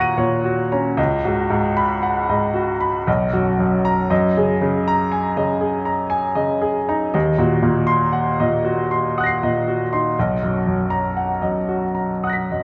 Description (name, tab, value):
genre	classical, impressionist solo piano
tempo	58 BPM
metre	3/4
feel	rubato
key	Eb minor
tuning	A4 = 440 Hz
part	clear baby grand piano	solo	0.0-12.6 s	B1 to Eb7	-20 LUFS	equal	none
room	moderate scoring stage reverb, RT60 1.6 s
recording	dark, warm production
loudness	-20 LUFS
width	mono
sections	0.0-12.6 A section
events	none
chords	0.0 Ebm7; 1.0 Db9sus4; 3.1 Bmaj7; 4.1 Gb69; 7.1 Ebm6; 10.2 Bmaj7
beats	| 0.98 2.03 3.07 | 4.10 5.12 6.12 | 7.14 8.14 9.15 | 10.16 11.16 12.22